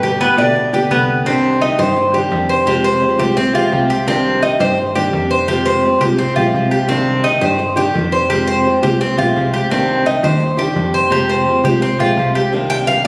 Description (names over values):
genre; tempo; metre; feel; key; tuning
latin, Cuban son and guajira; 170 BPM; 4/4; straight; C minor; A4 = 440 Hz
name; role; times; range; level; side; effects
flamenco guitar; accompaniment; 0.0-13.1 s; B2 to G4; -20 LUFS; equal; none
Cuban tres; arpeggios; 0.0-13.1 s; B3 to G5; -18 LUFS; equal; none
plucky analog bass; bass; 0.0-13.0 s; B1 to B2; -24 LUFS; equal; none
room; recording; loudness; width
wet concert hall reverb, RT60 2.4 s; recorded on a phone in the room, studio reverb; -15 LUFS; mono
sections
0.0-1.3 A section; 1.3-12.5 B section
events
none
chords
0.0 G; 1.3 Cmadd9; 2.7 Fmadd9; 4.1 Cmadd9; 5.5 Fmadd9; 6.9 Cmadd9; 8.3 Fmadd9; 9.7 Cmadd9; 11.1 Fmadd9; 12.5 Cmadd9